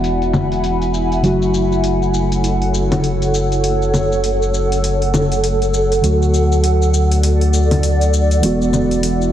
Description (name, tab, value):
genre	organic downtempo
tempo	100 BPM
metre	4/4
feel	swing 60% on 16ths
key	F# minor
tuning	A4 = 440 Hz
part	muted felt-like synth keys	accompaniment	0.0-9.3 s	C#3 to F#4	-19 LUFS	right 1 dB	chorus, digital delay
part	granular cloud pad	sustained chords	0.0-9.3 s	E4 to B5	-19 LUFS	right 1 dB	built-in reverb
part	round analog bass	bass	0.0-9.3 s	E1 to D2	-18 LUFS	equal	none
part	electronic hi-hat, shaker and congas	drums	0.0-9.3 s	none	-22 LUFS	left 2 dB	overdrive, low-pass filter on hats, low-pass filter on perc, low-pass filter on room
room	moderate digital room reverb, RT60 1.1 s, digital ambience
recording	heavily compressed radio sound, multiband compression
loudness	-14 LUFS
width	side -11 dB against mid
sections	0.0-9.3 A section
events	filter sweep on drum 0.0-9.3; filter sweep on ambient pad 0.0-9.3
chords	0.0 Eadd9; 1.2 F#m; 6.0 D; 8.4 Eadd9